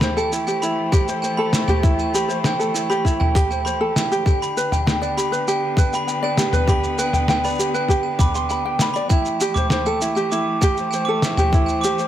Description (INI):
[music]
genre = folktronica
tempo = 99 BPM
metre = 4/4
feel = straight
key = unclear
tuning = A4 = 440 Hz
[part]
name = rich string quartet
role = sustained chords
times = 0.0-12.1 s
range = D3 to C5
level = -28 LUFS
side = left 2 dB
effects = none
[part]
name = ukulele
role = arpeggios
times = 0.0-12.1 s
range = E4 to C6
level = -23 LUFS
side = equal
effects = ping-pong delay
[part]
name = lo-fi sampler-style drum kit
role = drums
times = 0.0-12.1 s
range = shaker, snare drum, toms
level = -23 LUFS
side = equal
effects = small room ambience
[part]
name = glockenspiel with brass mallets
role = second line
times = 0.2-12.0 s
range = G5 to D6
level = -24 LUFS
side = right 2 dB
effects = digital delay
[part]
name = electronic kick drum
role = drums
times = 0.9-11.7 s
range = none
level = -18 LUFS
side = equal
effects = small room ambience
[sound]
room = light reverb, studio reverb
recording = none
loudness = -17 LUFS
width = side -11 dB against mid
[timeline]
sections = 0.0-12.1 A section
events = none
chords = 0.0 C6; 4.3 G; 9.1 C6